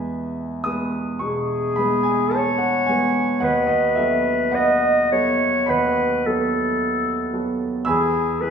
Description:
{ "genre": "classical, romantic duo for clarinet and grand piano", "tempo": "54 BPM", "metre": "4/4", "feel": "rubato", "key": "E major", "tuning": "A4 = 437 Hz", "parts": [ { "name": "warm concert grand piano", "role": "accompaniment", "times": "0.0-8.5 s", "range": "D#2 to E6", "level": "-21 LUFS", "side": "right 2 dB", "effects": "none" }, { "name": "warm clarinet", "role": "melody", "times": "1.2-8.5 s", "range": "G#4 to D#5", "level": "-21 LUFS", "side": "left 3 dB", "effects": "none" } ], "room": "wet recital hall reverb, RT60 1.5 s", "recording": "recorded in a church or concert hall", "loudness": "-18 LUFS", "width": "side -7 dB against mid", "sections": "0.0-8.5 A section", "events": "none", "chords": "0.0 E; 3.4 B7/D#; 7.9 E" }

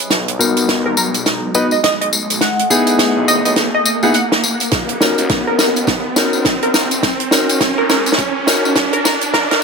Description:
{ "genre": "glitch hop", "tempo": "104 BPM", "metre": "4/4", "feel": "swing 60% on 16ths", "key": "unclear", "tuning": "A4 = 437 Hz", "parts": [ { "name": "warm concert grand piano", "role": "stabs", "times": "0.0-9.3 s", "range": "B3 to B4", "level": "-19 LUFS", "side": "left 2 dB", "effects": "sidechain pumping, low-pass filter, dub echo" }, { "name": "compact cocktail drum kit", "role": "drums", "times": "0.0-9.6 s", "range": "hi-hat, snare drum", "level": "-17 LUFS", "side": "right 1 dB", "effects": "small room reverb" }, { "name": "tambourine", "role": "percussion", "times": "0.0-9.5 s", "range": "none", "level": "-20 LUFS", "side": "left 4 dB", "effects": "none" }, { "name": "riser", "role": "sound effects", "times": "0.0-9.6 s", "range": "none", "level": "-21 LUFS", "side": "right 3 dB", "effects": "none" }, { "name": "phased detuned saw bass", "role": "bass", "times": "0.1-9.6 s", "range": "Eb1 to D#2", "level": "-25 LUFS", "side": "equal", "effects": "phaser, high-pass filter" }, { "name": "plucky unison lead", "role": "melody", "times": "0.9-9.6 s", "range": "A#4 to Gb5", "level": "-20 LUFS", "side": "equal", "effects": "wide subtle chorus, cassette tape, dub echo" }, { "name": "electronic kick drum", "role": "drums", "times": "4.7-9.5 s", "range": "none", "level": "-26 LUFS", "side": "equal", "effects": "small room reverb" } ], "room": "moderate plate reverb, RT60 2.0 s", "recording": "high-pass filter", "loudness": "-12 LUFS", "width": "side -5 dB against mid", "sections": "0.0-9.6 A section", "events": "build-up 0.0-9.6; drum fill 0.0-9.6; riser 0.0-9.6; filter sweep on digital synth lead 0.0-9.6", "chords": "0.1 Bmaj7; 2.4 Emaj7; 4.7 Ebm7; 7.0 Bmaj9" }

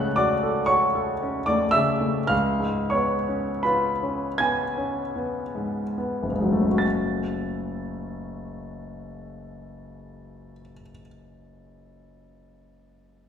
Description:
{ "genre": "classical, romantic nocturne for solo piano", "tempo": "23-41 BPM (dotted quarters)", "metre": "12/8", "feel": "rubato", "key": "F# minor", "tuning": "A4 = 440 Hz", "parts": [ { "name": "warm concert grand piano", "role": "solo", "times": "0.0-13.3 s", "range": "F#1 to A6", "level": "-23 LUFS", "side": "equal", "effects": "none" } ], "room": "wet recital hall reverb, RT60 1.7 s", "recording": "heard from further back in the room", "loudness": "-22 LUFS", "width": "side -8 dB against mid", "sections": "0.0-6.8 A section; 6.8-13.3 B section", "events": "slowing down 0.0-6.8", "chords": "0.0 F#m/C#; 2.3 C#7; 6.8 F#m" }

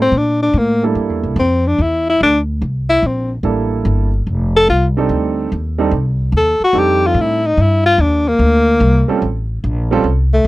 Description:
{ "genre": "jazz, small-group swing and bop", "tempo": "145 BPM", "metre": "4/4", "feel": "swing 67% on 8ths", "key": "C mixolydian", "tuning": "A4 = 440 Hz", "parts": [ { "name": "mellow tenor saxophone", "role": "melody", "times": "0.0-10.5 s", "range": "A3 to A4", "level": "-13 LUFS", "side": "left 1 dB", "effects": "none" }, { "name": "upright bass", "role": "bass", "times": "0.0-10.5 s", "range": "F1 to Bb2", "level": "-16 LUFS", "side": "equal", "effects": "none" }, { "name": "warm concert grand piano", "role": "accompaniment", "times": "0.8-10.0 s", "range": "G3 to A4", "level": "-18 LUFS", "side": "right 6 dB", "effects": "none" } ], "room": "little or no reverb", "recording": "dry, close 1970s-style studio recording", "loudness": "-12 LUFS", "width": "side -18 dB against mid", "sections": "0.0-10.5 A section", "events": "tenor saxophone solo 0.0-10.5", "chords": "0.0 C13; 4.3 F13; 7.6 Csus2; 9.2 Am" }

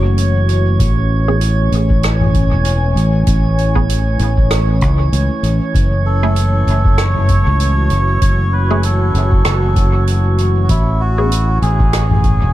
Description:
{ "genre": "ambient dub", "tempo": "97 BPM", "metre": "4/4", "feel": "swing 57% on 16ths", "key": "unclear", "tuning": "A4 = 439 Hz", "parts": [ { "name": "warm analog pad", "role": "sustained chords", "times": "0.0-12.5 s", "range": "E3 to G#5", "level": "-21 LUFS", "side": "equal", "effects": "chorus" }, { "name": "fingered electric bass", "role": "bass", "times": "0.0-12.5 s", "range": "E1 to C#2", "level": "-14 LUFS", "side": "equal", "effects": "none" }, { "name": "drifting glass-harmonics texture", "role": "texture", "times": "0.0-12.5 s", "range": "C#5", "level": "-26 LUFS", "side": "right 7 dB", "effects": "chorus, built-in reverb" }, { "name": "soft-mallet drum kit", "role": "drums", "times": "0.2-12.4 s", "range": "hi-hat, rim click, toms", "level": "-22 LUFS", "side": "equal", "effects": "dub echo" }, { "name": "electronic kick drum", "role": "drums", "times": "0.8-12.4 s", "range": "none", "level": "-17 LUFS", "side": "equal", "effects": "none" }, { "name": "filtered dub chord stab", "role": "stabs", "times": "1.3-11.3 s", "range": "A3 to G#4", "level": "-26 LUFS", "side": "right 1 dB", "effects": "phaser, cassette tape, dub echo" }, { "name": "melodica", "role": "melody", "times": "6.1-12.5 s", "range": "E4 to C#5", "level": "-21 LUFS", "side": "right 1 dB", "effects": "dub echo" } ], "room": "small room reverb", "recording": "dark, warm production", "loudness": "-12 LUFS", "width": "side -15 dB against mid", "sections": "0.0-12.5 A section", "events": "none", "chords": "0.0 F#m7; 0.8 Amaj7; 5.7 F#m7; 10.7 Amaj7" }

